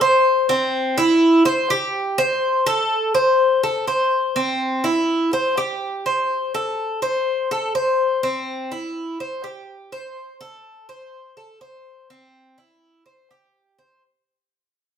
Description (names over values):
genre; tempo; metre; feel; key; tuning
latin; 124 BPM; 4/4; straight; unclear; A4 = 440 Hz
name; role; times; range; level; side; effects
Cuban tres; solo; 0.0-14.0 s; C4 to C5; -18 LUFS; equal; none
room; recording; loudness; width
wet large studio reverb, RT60 0.9 s; band playing live in one room; -18 LUFS; side -8 dB against mid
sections
0.0-14.0 A section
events
fade-out 0.0-14.0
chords
none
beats
0.01 | 0.49 0.98 1.46 1.95 | 2.43 2.91 3.40 3.88 | 4.37 4.85 5.33 5.82 | 6.30 6.78 7.27 7.75 | 8.23 8.71 9.20 9.68 | 10.16 10.65 11.13 11.61 | 12.09 12.58 13.06 13.54